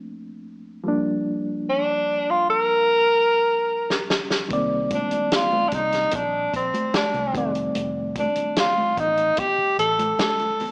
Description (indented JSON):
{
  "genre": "lush 1970s-style soul",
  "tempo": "74 BPM",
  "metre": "4/4",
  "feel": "straight",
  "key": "C dorian",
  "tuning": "A4 = 440 Hz",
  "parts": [
    { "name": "reed electric piano", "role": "accompaniment", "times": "0.0-10.7 s", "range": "Eb3 to D5", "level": "-30 LUFS", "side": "equal", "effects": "fast tremolo" },
    { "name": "warm tenor saxophone", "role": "melody", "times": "1.7-10.7 s", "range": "C4 to Bb4", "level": "-22 LUFS", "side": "equal", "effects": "slapback echo" },
    { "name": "vintage drum kit", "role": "drums", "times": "3.9-10.7 s", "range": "hi-hat, kick drum, snare drum", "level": "-28 LUFS", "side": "equal", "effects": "none" },
    { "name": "vintage muted fingered electric bass", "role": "bass", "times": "4.5-10.1 s", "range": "F1 to C2", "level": "-37 LUFS", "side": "equal", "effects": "none" },
    { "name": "congas", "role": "percussion", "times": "4.5-10.7 s", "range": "none", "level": "-36 LUFS", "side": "equal", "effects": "none" }
  ],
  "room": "light reverb, small room ambience",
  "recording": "small speaker sound",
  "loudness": "-22 LUFS",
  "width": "mono",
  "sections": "0.0-10.7 A section",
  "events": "drum fill 2.9-4.5",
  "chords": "0.0 Bbmaj9; 0.9 Gm7; 4.5 Cm9; 7.3 F13"
}